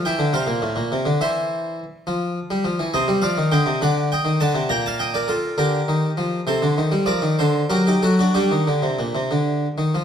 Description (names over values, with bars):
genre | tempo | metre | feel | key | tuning
classical, baroque-style suite movement for harpsichord | 62-70 BPM (dotted quarters) | 6/8 | rubato | G minor | A4 = 440 Hz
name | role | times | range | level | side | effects
harpsichord | solo | 0.0-10.0 s | A2 to Bb5 | -18 LUFS | equal | none
room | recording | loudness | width
wet stone room reverb, RT60 1.4 s | dark, warm production | -18 LUFS | side -8 dB against mid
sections
0.0-10.0 A section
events
none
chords
0.0 F; 1.2 C/E; 2.1 Em; 2.9 Cmadd9; 3.8 D7; 4.7 Gm/Bb; 6.5 Adim/C; 7.4 D; 8.4 Gm